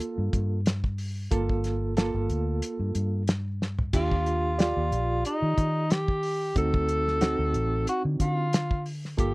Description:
straight-eighth soul blues; 92 BPM; 4/4; swing 55% on 16ths; G minor; A4 = 443 Hz
reed electric piano; accompaniment; 0.0-9.3 s; Bb3 to D5; -31 LUFS; right 3 dB; fast tremolo
cloth-damped thuddy drum kit; drums; 0.0-9.3 s; crash cymbal, hi-hat, kick drum, snare drum, toms; -27 LUFS; equal
vintage muted fingered electric bass; bass; 0.2-9.3 s; G1 to Eb3; -28 LUFS; equal
breathy tenor saxophone; melody; 4.0-9.3 s; Eb4 to A4; -28 LUFS; equal
little or no reverb; dry, close 1970s-style studio recording, faint mains hum; -24 LUFS; side -23 dB against mid
0.0-9.3 A section
drum fill 3.6-3.9
0.0 Gm7; 3.9 Ebmaj7; 6.6 D7b9

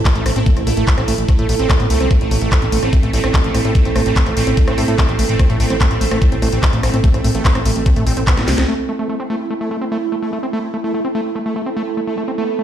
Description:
psychedelic trance; 146 BPM; 4/4; straight; A minor; A4 = 444 Hz
pulsing gated texture; sustained chords; 0.0-12.6 s; A3 to E4; -24 LUFS; right 2 dB; chorus, built-in reverb, sidechain pumping
warbly tape-like pad; texture; 0.0-12.6 s; E4 to A5; -24 LUFS; right 6 dB; chorus, built-in reverb, sidechain pumping
overdriven acid bass; riff; 0.1-12.6 s; A3 to C4; -23 LUFS; equal; distortion, auto-pan, sidechain pumping, tape echo
drum and bass drum kit; drums; 0.1-8.7 s; handclaps, hi-hat, rim click, snare drum; -22 LUFS; left 1 dB
electronic kick drum; drums; 0.1-8.4 s; -14 LUFS; equal
fat analog bass; bass; 0.2-8.6 s; A1 to A2; -18 LUFS; equal
vowel-sweep wobble bass; second line; 0.3-7.4 s; A3 to C4; -35 LUFS; left 2 dB
light reverb; played on a big sound system in a bare room, stone room reverb; -14 LUFS; side -10 dB against mid
0.0-8.7 A section; 8.7-12.6 B section
filter sweep on acid bass 0.0-8.7; drum fill 8.4-8.7
0.0 A5

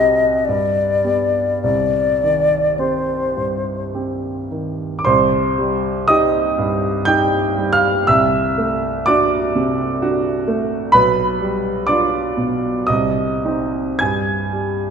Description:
classical, romantic duo for flute and grand piano; 50-66 BPM; 3/4; rubato; C minor; A4 = 442 Hz
mellow silver concert flute; melody; 0.0-3.9 s; C5 to Eb5; -16 LUFS; left 3 dB
warm grand piano; accompaniment; 0.0-14.9 s; B1 to Ab6; -16 LUFS; right 1 dB
wet scoring stage reverb, RT60 2.1 s; -15 LUFS; side -6 dB against mid
0.0-5.1 A section; 5.1-14.9 A section
0.5 G; 1.6 Cm; 8.1 D7/C; 10.9 G7/B; 12.9 Cm; 14.0 N.C.

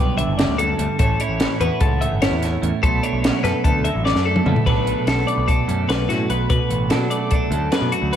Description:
math rock and midwest emo; 294 BPM (eighths); 9/8; straight; B minor; A4 = 438 Hz
twelve-string electric guitar; accompaniment; 0.0-8.2 s; F#2 to A4; -24 LUFS; right 6 dB
twelve-string electric guitar; arpeggios; 0.0-8.2 s; F#4 to E5; -23 LUFS; left 6 dB; digital delay, slapback echo
growling picked electric bass; bass; 0.0-8.1 s; F#1 to B2; -23 LUFS; equal; overdrive
compact cocktail drum kit; drums; 0.2-8.2 s; crash cymbal, hi-hat, kick drum, snare drum, toms; -21 LUFS; equal
light reverb, studio ambience; -17 LUFS; side -9 dB against mid
0.0-4.7 A section; 4.7-8.2 B section
drum fill 4.0-4.7
0.0 Gmaj7; 1.0 A; 2.8 Bm7

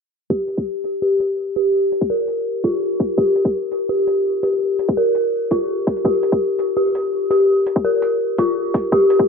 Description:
half-time drum and bass; 167 BPM; 4/4; half-time; A4 = 440 Hz
dark detuned synth bell; arpeggios; 0.3-9.3 s; F4 to Bb4; -17 LUFS; left 1 dB; chorus, low-pass filter, digital delay
electronic kick drum; drums; 0.3-9.3 s; -20 LUFS; equal; overdrive, high-pass filter on kick
electronic hi-hat; drums; 0.5-9.2 s; -41 LUFS; right 3 dB
wet plate reverb, RT60 1.5 s, digital ambience; bright 1980s-style digital production, low-pass filter; -16 LUFS; side -5 dB against mid
0.3-9.3 A section
filter sweep on synth bell 0.3-9.3; filter sweep 0.3-9.3

